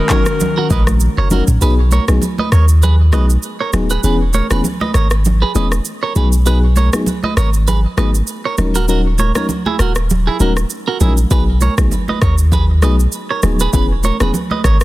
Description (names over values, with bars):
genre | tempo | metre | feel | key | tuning
afrobeats | 99 BPM | 4/4 | swing 55% on 16ths | B major | A4 = 440 Hz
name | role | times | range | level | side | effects
breathy alto saxophone | melody | 0.0-1.3 s | A#4 | -22 LUFS | equal | digital delay
airy breathy pad | sustained chords | 0.0-1.6 s | D#3 to F#4 | -24 LUFS | left 6 dB | chorus, phaser
clean electric guitar | riff | 0.0-14.8 s | E4 to D#5 | -21 LUFS | right 6 dB | warbly pitch drift, digital delay
FM electric piano with tremolo | accompaniment | 0.1-14.3 s | E3 to A#4 | -22 LUFS | left 4 dB | none
afro-pop drum kit | drums | 0.1-14.8 s | handclaps, kick drum, rim click, shaker, toms | -19 LUFS | equal | soft clipping on snare
congas | percussion | 0.4-14.6 s | none | -22 LUFS | right 2 dB | none
punchy sub bass | bass | 0.7-14.8 s | D#1 to D#2 | -13 LUFS | equal | none
room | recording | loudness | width
little or no reverb | dense, heavily limited modern master | -12 LUFS | side -17 dB against mid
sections
0.0-1.6 A section; 1.6-14.8 B section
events
kick muted 1.6-11.3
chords
0.0 D#m7; 1.6 B6; 4.0 E6; 6.2 B6; 8.6 D#m7; 11.3 B6; 13.7 E6